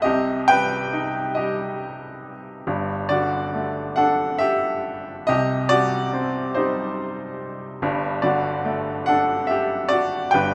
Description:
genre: classical, lyrical solo piano.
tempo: 47 BPM (dotted quarters).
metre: 6/8.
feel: rubato.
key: unclear.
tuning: A4 = 440 Hz.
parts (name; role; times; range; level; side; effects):
bright upright piano; solo; 0.0-10.5 s; G1 to G5; -23 LUFS; equal; none.
room: moderate scoring stage reverb, RT60 1.9 s.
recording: none.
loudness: -22 LUFS.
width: mono.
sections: 0.0-10.5 A section.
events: none.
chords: 0.0 Cm; 2.7 Gsus2; 5.3 Cmadd9; 7.8 Gsus2.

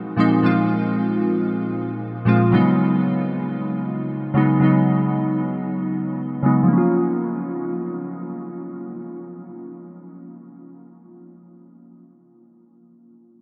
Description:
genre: amapiano.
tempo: 115 BPM.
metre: 4/4.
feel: swing 55% on 16ths.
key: Bb phrygian.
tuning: A4 = 442 Hz.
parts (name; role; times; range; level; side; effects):
glassy digital keys; accompaniment; 0.0-13.4 s; Bb2 to F4; -21 LUFS; equal; chorus, low-pass filter.
room: wet huge ambient reverb, RT60 8.5 s.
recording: dreamy mix soaked in reverb.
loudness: -20 LUFS.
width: mono.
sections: 0.0-6.7 A section; 6.7-10.9 B section.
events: filter sweep on synth keys 0.0-6.7.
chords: 0.0 Bb9sus4; 2.5 Db9sus4; 6.7 Bbm.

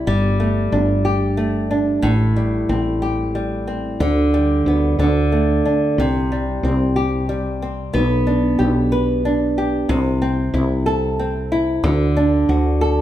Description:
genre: six-eight pop ballad.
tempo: 61 BPM (dotted quarters).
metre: 6/8.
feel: straight.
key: G major.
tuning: A4 = 440 Hz.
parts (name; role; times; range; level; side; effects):
nylon-string guitar; accompaniment; 0.0-13.0 s; A2 to B4; -18 LUFS; right 1 dB; none.
woody fretless electric bass; bass; 0.0-13.0 s; G1 to D2; -20 LUFS; equal; none.
room: wet large studio reverb, RT60 1.2 s.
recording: band playing live in one room.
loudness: -16 LUFS.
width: side -12 dB against mid.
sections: 0.0-13.0 A section.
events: none.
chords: 0.1 Gsus2; 2.0 Am7; 4.0 G/D; 5.0 D5; 6.0 C5; 7.9 G/B; 9.9 Am/C; 11.8 D.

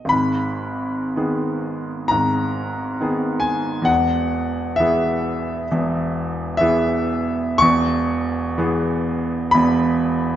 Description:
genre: classical, romantic nocturne for solo piano.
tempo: 50-69 BPM.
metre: 4/4.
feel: rubato.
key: G# minor.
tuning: A4 = 441 Hz.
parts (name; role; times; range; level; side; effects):
clear baby grand piano; solo; 0.0-10.4 s; E1 to C#6; -18 LUFS; equal; none.
room: moderate scoring stage reverb, RT60 1.6 s.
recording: nothing above 7.7 kHz.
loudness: -18 LUFS.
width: side -11 dB against mid.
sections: 0.1-10.4 A section.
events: none.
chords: 0.1 G#m; 3.9 E.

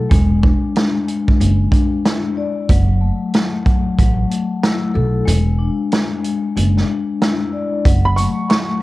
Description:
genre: hip hop, boom-bap hip-hop.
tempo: 93 BPM.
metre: 4/4.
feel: swing 61% on 16ths.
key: F# minor.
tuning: A4 = 440 Hz.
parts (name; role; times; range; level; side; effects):
vibraphone with soft mallets; accompaniment; 0.0-8.8 s; F#3 to D5; -20 LUFS; left 4 dB; cassette tape, high-pass filter, low-pass filter.
upright bass; bass; 0.0-8.3 s; E1 to B1; -16 LUFS; right 1 dB; none.
vintage drum kit; drums; 0.1-8.7 s; hi-hat, kick drum, shaker, snare drum; -16 LUFS; right 1 dB; cassette tape.
bright upright piano; melody; 8.1-8.8 s; B5 to C#6; -20 LUFS; right 2 dB; high-pass filter, low-pass filter, cassette tape.
tambourine; percussion; 8.2-8.4 s; none; -40 LUFS; right 8 dB; none.
room: little or no reverb.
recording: home recording on cassette.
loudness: -14 LUFS.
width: side -18 dB against mid.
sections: 0.0-7.9 A section.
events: kick muted 5.3-7.9.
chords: 0.1 E7; 2.7 F#m7; 5.3 E7; 7.9 F#m.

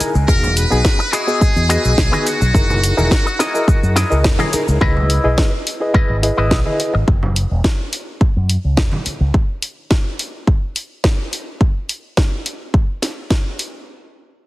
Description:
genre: nu-disco, nu disco.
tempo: 106 BPM.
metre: 4/4.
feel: straight.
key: F# mixolydian.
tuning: A4 = 440 Hz.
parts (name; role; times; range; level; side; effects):
reed electric piano; accompaniment; 0.0-6.9 s; B3 to D#5; -21 LUFS; equal; fast tremolo, sidechain pumping, low-pass filter, slapback echo.
electric guitar with an envelope filter; riff; 0.0-7.0 s; E4 to G#5; -22 LUFS; left 2 dB; wide subtle chorus, slapback echo.
fingered electric bass with an envelope filter; bass; 0.0-9.3 s; E1 to F#2; -17 LUFS; equal; none.
house drum kit; drums; 0.0-13.7 s; hi-hat, shaker, snare drum; -22 LUFS; equal; none.
muted trumpet section; melody; 0.3-4.2 s; F#4 to B4; -21 LUFS; equal; analog delay.
electronic kick drum; drums; 0.3-13.4 s; none; -15 LUFS; equal; none.
congas; percussion; 0.4-9.0 s; none; -27 LUFS; right 2 dB; none.
room: light reverb.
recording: heavily compressed radio sound, multiband compression.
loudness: -14 LUFS.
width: side -18 dB against mid.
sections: 0.0-4.8 A section; 4.8-13.9 B section.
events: drop 0.0-4.8; clean electric guitar fill 0.0; band accent 4.2; filter sweep on reed electric piano 4.8-7.1.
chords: 0.3 Emaj9; 2.5 F#13; 4.8 C#m9; 7.1 F#5; 9.3 N.C..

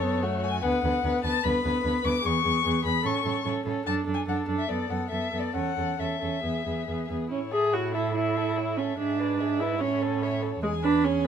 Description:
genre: quick classical-period movement for string quartet.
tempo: 146 BPM.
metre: 4/4.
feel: rubato.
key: A major.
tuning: A4 = 440 Hz.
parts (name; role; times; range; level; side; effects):
warm violin; melody; 0.0-11.3 s; C#5 to D6; -31 LUFS; left 7 dB; none.
dark violin; second line; 0.0-11.3 s; E4 to C#5; -33 LUFS; left 4 dB; none.
warm viola; accompaniment; 0.0-11.3 s; G#3 to G#4; -28 LUFS; right 3 dB; none.
warm cello; bass; 0.0-11.3 s; D2 to A2; -32 LUFS; right 3 dB; none.
room: light reverb.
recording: none.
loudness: -24 LUFS.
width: side -8 dB against mid.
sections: 0.0-7.3 A section; 7.3-11.3 B section.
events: none.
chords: 0.0 F#m; 0.6 Bm/D; 2.2 E; 3.1 A; 3.9 D/F#; 4.7 B5/F#; 5.5 A/E; 6.4 E; 7.3 A; 9.0 E7/G#; 9.8 A; 10.6 E.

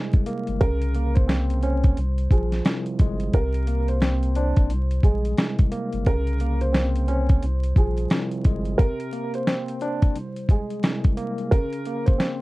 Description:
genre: hip hop, boom-bap hip-hop.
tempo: 88 BPM.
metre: 4/4.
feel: swing 61% on 16ths.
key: unclear.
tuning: A4 = 441 Hz.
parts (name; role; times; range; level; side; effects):
dark upright piano; melody; 0.0-12.4 s; Ab4 to C5; -30 LUFS; right 2 dB; high-pass filter, low-pass filter, analog delay.
barky tine electric piano; accompaniment; 0.0-12.4 s; C2 to D4; -28 LUFS; equal; medium stereo tremolo, cassette tape, high-pass filter, low-pass filter.
dusty soul sampler-style drum kit; drums; 0.1-12.4 s; hi-hat, kick drum, snare drum; -19 LUFS; equal; none.
warm sub bass; bass; 0.5-8.8 s; G1 to C2; -24 LUFS; equal; none.
room: little or no reverb.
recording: dark, warm production, vinyl crackle.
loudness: -20 LUFS.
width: side -20 dB against mid.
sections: 0.0-3.3 A section; 3.3-12.4 A section.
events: none.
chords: 0.0 Bbsus2; 0.6 Bbmadd9/C; 2.0 Fmadd9; 3.3 Csus2; 4.7 Bbsus2; 6.1 Bbmadd9/C; 7.4 Fmadd9; 8.8 Csus2; 10.2 Bbsus2/C; 11.5 Bbmadd9/Db.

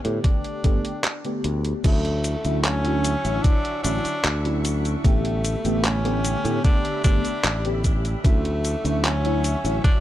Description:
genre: vaporwave.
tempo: 75 BPM.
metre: 4/4.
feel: straight.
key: D major.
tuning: A4 = 440 Hz.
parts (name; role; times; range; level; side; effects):
FM electric piano with soft pad layer; accompaniment; 0.0-10.0 s; D3 to C#5; -28 LUFS; left 1 dB; phaser, wide subtle chorus, cassette tape, analog delay.
modern bright fingered electric bass; bass; 0.0-9.8 s; G1 to A2; -24 LUFS; equal; none.
detuned 8-bit digital drum machine; drums; 0.0-10.0 s; cabasa, crash cymbal, handclaps, hi-hat; -27 LUFS; equal; none.
breathy tenor saxophone; melody; 0.2-10.0 s; A3 to D4; -29 LUFS; equal; vintage 12-bit sampler grit, tape echo.
electronic kick drum; drums; 0.2-10.0 s; none; -19 LUFS; equal; none.
soft string machine; sustained chords; 2.2-10.0 s; F#4 to C#6; -36 LUFS; right 1 dB; ensemble chorus.
room: little or no reverb.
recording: dry, gritty hardware recording.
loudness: -20 LUFS.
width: side -13 dB against mid.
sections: 0.0-1.8 A section; 1.8-10.0 B section.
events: break 1.0-1.8.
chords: 0.0 A9sus4; 1.8 Dmaj9; 5.0 A9sus4; 8.2 Dmaj9.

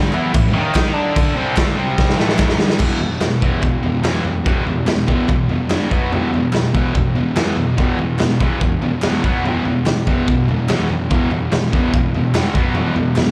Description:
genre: garage rock duo or trio.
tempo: 145 BPM.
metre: 4/4.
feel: straight.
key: unclear.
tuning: A4 = 440 Hz.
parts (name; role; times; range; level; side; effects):
thick fuzz guitar; riff; 0.0-13.3 s; E2 to E4; -20 LUFS; equal; distortion, slapback echo.
group handclap; percussion; 0.1-13.3 s; none; -36 LUFS; equal; none.
raw garage drum kit; drums; 0.3-13.3 s; crash cymbal, kick drum, snare drum, toms; -20 LUFS; equal; none.
room: light reverb, small room reverb.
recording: live gig heard through the venue's PA, club reverb.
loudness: -17 LUFS.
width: mono.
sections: 0.0-2.8 A section; 2.8-13.3 B section.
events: drum fill 2.0-2.8.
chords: 0.1 A5; 0.6 D#5; 1.0 D5; 1.4 Csus2; 1.8 C5; 2.2 A5; 2.8 E5; 5.7 G5; 5.9 B5; 6.1 E5; 9.2 B5; 9.4 E5; 12.3 G5; 12.6 B5; 12.8 E5.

